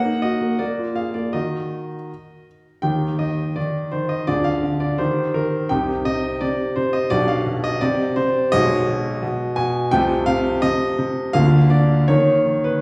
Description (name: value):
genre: classical-period piano sonatina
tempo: 84 BPM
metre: 2/4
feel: rubato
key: Eb major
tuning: A4 = 436 Hz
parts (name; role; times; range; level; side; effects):
- clear grand piano; solo; 0.0-12.8 s; B1 to Ab5; -20 LUFS; equal; none
room: wet recital hall reverb, RT60 1.4 s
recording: heard from further back in the room, studio ambience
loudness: -20 LUFS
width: mono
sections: 0.0-2.8 A section; 2.8-12.8 B section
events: none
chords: 0.0 Ebm/Bb; 0.6 Bb7; 1.3 Ebm; 2.8 Eb; 4.3 Ddim; 5.0 Eb; 5.7 Cm; 7.1 G7/B; 7.8 C5; 8.5 Abm/Cb; 9.9 F7/C; 11.4 Bb/D; 12.1 Eb5